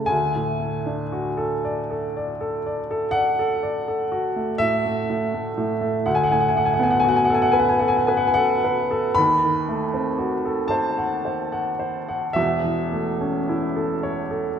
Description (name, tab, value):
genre	classical, romantic nocturne for solo piano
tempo	35-42 BPM (dotted quarters)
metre	12/8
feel	rubato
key	unclear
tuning	A4 = 443 Hz
part	clear upright piano	solo	0.0-14.6 s	E1 to B5	-20 LUFS	equal	none
room	wet concert hall reverb, RT60 1.7 s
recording	recorded in a church or concert hall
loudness	-20 LUFS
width	side -8 dB against mid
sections	0.0-14.6 A section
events	none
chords	0.1 D; 6.1 Bm7/D; 9.2 D#dim7; 12.4 A/E